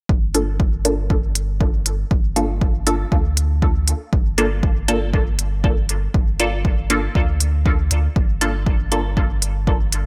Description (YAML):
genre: dub techno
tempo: 119 BPM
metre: 4/4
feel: swing 54% on 16ths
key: G minor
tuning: A4 = 440 Hz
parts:
  - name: warm sub bass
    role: bass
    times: 0.1-10.1 s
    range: G1 to D2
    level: -24 LUFS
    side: equal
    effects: sidechain pumping
  - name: electronic kick drum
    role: drums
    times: 0.1-9.8 s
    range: none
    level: -21 LUFS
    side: equal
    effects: none
  - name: filtered dub chord stab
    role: stabs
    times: 0.3-9.0 s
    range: Bb3 to A4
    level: -26 LUFS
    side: equal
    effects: phaser, sidechain pumping, dub echo
  - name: electronic hi-hat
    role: drums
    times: 0.3-10.0 s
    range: none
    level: -22 LUFS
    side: equal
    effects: none
room: digital ambience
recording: none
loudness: -19 LUFS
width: mono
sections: 0.1-10.1 A section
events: none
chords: 0.1 Gm7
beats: | 0.09 0.60 1.10 1.61 | 2.11 2.62 3.12 3.62 | 4.13 4.63 5.14 5.64 | 6.14 6.65 7.15 7.66 | 8.16 8.66 9.17 9.67